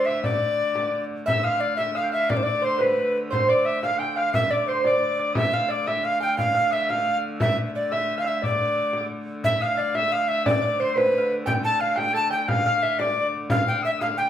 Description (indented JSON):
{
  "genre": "medieval dance",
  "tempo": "118 BPM (dotted quarters)",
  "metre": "6/8",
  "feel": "straight",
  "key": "D dorian",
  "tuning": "A4 = 439 Hz",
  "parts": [
    { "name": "breathy tenor recorder", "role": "melody", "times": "0.0-14.3 s", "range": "B4 to A5", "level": "-24 LUFS", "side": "equal", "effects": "none" },
    { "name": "bright shawm", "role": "second line", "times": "0.0-14.3 s", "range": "F5 to E6", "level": "-28 LUFS", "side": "left 4 dB", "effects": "none" },
    { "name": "lute", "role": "second line", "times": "0.0-14.3 s", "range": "A4 to G5", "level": "-28 LUFS", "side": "right 3 dB", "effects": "none" },
    { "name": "rich hurdy-gurdy", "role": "drone", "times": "0.0-14.3 s", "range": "D3 to A3", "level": "-33 LUFS", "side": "left 1 dB", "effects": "none" },
    { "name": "frame drum", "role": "percussion", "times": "0.1-14.2 s", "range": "none", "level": "-28 LUFS", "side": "equal", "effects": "none" }
  ],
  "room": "wet large studio reverb, RT60 0.8 s",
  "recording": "band playing live in one room",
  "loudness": "-21 LUFS",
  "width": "side -10 dB against mid",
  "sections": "0.0-1.3 A section; 1.3-9.4 B section; 9.4-14.3 B section",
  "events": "none",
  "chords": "none"
}